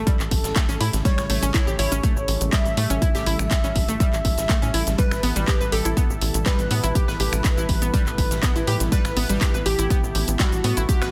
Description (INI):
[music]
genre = progressive house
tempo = 122 BPM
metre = 4/4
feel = straight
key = A mixolydian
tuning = A4 = 440 Hz
[part]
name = warm velvety synth lead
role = melody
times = 0.0-11.1 s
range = F#4 to E5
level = -32 LUFS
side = equal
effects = chorus, sidechain pumping, tape echo
[part]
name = glassy wavetable pluck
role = second line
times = 0.0-11.1 s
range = F#4 to E5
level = -36 LUFS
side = equal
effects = none
[part]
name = lush unison pad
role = sustained chords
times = 0.0-11.1 s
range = B2 to A4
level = -34 LUFS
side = equal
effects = chorus, sidechain pumping
[part]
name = tight sequencer bass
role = bass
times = 0.0-11.1 s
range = A1 to A2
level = -27 LUFS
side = equal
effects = sidechain pumping
[part]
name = analog pluck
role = arpeggios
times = 0.1-11.1 s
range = G3 to B4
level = -31 LUFS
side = equal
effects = chorus, sidechain pumping, tape echo
[part]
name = electronic kick drum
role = drums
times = 0.1-11.0 s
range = none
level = -24 LUFS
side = equal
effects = none
[part]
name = open jazz drum kit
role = drums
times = 0.1-11.1 s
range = hi-hat, snare drum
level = -41 LUFS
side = equal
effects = none
[part]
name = pop drum kit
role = drums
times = 0.1-11.1 s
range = finger snaps, handclaps, hi-hat, shaker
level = -30 LUFS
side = equal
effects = soft clipping on snare
[sound]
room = little or no reverb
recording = dense, heavily limited modern master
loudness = -21 LUFS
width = mono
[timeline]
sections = 0.0-11.1 A section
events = none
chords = 0.0 A7; 5.0 Em/A